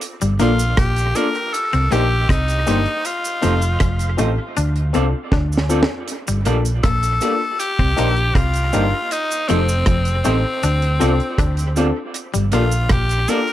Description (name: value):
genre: lovers rock reggae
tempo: 79 BPM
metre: 4/4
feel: straight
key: G minor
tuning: A4 = 440 Hz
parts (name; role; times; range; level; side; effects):
- deep reggae drum kit; drums; 0.0-13.5 s; hi-hat, kick drum, rim click, snare drum; -21 LUFS; right 1 dB; dub echo
- cabasa; percussion; 0.0-13.5 s; none; -32 LUFS; right 4 dB; none
- twangy electric guitar; riff; 0.2-13.1 s; F3 to D4; -26 LUFS; left 8 dB; none
- hollow-body short-scale fingered electric bass; bass; 0.2-13.2 s; F1 to D2; -19 LUFS; right 1 dB; none
- raspy tenor saxophone; melody; 0.4-13.5 s; C4 to Bb4; -22 LUFS; left 2 dB; tape echo
- dark grand piano; accompaniment; 0.4-13.4 s; Bb3 to Bb4; -23 LUFS; left 5 dB; none
- electric guitar through a small old amp; stabs; 0.4-13.4 s; A3 to D5; -26 LUFS; right 5 dB; dub echo
room: light reverb, small room ambience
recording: none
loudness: -16 LUFS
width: side -13 dB against mid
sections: 0.0-13.5 A section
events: drum fill 5.3-6.1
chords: 0.0 Gm7; 1.5 Cm7; 3.1 F7; 4.6 Dm7; 6.1 Gm7; 7.6 Cm7; 9.1 F7; 10.6 Dm7; 12.1 Gm7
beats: | 0.02 0.78 1.53 2.29 | 3.05 3.81 4.57 5.33 | 6.08 6.84 7.60 8.36 | 9.12 9.87 10.63 11.39 | 12.15 12.91